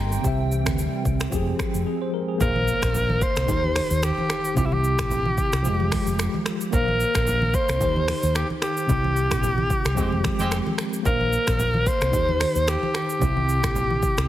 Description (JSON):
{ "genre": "afrobeats", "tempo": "111 BPM", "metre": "4/4", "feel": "swing 55% on 16ths", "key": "unclear", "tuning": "A4 = 441 Hz", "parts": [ { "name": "tine electric piano", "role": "accompaniment", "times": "0.0-14.3 s", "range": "C3 to C6", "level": "-28 LUFS", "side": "left 1 dB", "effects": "medium stereo tremolo" }, { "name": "hollow soft pad", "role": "sustained chords", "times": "0.0-2.4 s", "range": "Eb3 to G5", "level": "-32 LUFS", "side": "right 1 dB", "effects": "ensemble chorus" }, { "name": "woody fretless electric bass", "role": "bass", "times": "0.0-14.3 s", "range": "F1 to Eb2", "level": "-25 LUFS", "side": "equal", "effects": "none" }, { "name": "afro-pop drum kit", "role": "drums", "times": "0.1-14.3 s", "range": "finger snaps, hi-hat, kick drum, rim click, shaker", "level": "-27 LUFS", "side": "equal", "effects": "overdrive" }, { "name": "raspy alto saxophone", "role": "melody", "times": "2.4-14.3 s", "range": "E4 to C5", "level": "-25 LUFS", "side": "equal", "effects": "ping-pong delay" }, { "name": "congas", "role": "percussion", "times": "2.4-14.0 s", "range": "none", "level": "-33 LUFS", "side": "right 2 dB", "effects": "none" }, { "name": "impact", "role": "sound effects", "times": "2.4-4.6 s", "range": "none", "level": "-36 LUFS", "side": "equal", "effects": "none" }, { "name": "clear horn section", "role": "second line", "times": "10.0-10.6 s", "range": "Ab3 to G4", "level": "-31 LUFS", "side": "right 2 dB", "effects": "none" } ], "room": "light reverb, digital ambience", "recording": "heavily compressed radio sound, multiband compression", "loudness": "-20 LUFS", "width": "side -13 dB against mid", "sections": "0.0-2.4 A section; 2.4-14.3 B section", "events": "impact 2.4-4.6; band accent 8.9-11.1", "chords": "0.2 C; 1.3 Fmadd9; 2.4 Bbsus2; 3.5 Eb6; 4.6 C; 5.7 Fmadd9; 6.7 Bbsus2; 7.8 Eb6; 8.9 C; 10.0 Fmadd9; 11.1 Bbsus2; 12.1 Eb6; 13.2 C" }